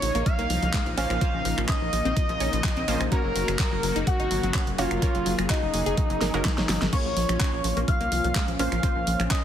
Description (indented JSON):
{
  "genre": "progressive house",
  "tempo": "126 BPM",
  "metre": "4/4",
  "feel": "straight",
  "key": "Bb minor",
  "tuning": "A4 = 439 Hz",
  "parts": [
    { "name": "expressive portamento lead", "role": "melody", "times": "0.0-9.4 s", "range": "Eb4 to F5", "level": "-29 LUFS", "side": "right 1 dB", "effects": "wide subtle chorus, ping-pong delay" },
    { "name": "soft synth bell", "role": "second line", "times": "0.0-9.4 s", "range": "Eb5 to F6", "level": "-36 LUFS", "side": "left 1 dB", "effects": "chorus, sidechain pumping, tape echo" },
    { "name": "warm analog pad", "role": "sustained chords", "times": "0.0-9.4 s", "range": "Db3 to Ab4", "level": "-33 LUFS", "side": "left 1 dB", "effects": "chorus, sidechain pumping" },
    { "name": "tight sequenced synth", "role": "arpeggios", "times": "0.0-9.4 s", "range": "F3 to Db5", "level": "-31 LUFS", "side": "left 1 dB", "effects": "chorus, sidechain pumping, tape echo" },
    { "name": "wide unison pluck", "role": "stabs", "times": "0.0-9.4 s", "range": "Gb3 to Db5", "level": "-33 LUFS", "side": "right 3 dB", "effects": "sidechain pumping, tape echo" },
    { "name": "tight sequencer bass", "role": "bass", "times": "0.0-9.3 s", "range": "Gb1 to C2", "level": "-29 LUFS", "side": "equal", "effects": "sidechain pumping" },
    { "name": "pop drum kit", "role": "drums", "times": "0.0-9.4 s", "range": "crash cymbal, finger snaps, handclaps, hi-hat, snare drum", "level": "-30 LUFS", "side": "equal", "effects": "overdrive, sidechain pumping on hats, sidechain pumping on cymbals" },
    { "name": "electronic kick drum", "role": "drums", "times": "0.3-9.4 s", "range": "none", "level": "-25 LUFS", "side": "equal", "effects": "overdrive" }
  ],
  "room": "light reverb",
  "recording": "heavily compressed radio sound, multiband compression",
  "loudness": "-22 LUFS",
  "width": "side -10 dB against mid",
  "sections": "0.0-9.4 A section",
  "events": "drum fill 6.2-6.9",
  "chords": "0.0 Bbmadd9; 3.1 Gb; 6.9 Bbmadd9"
}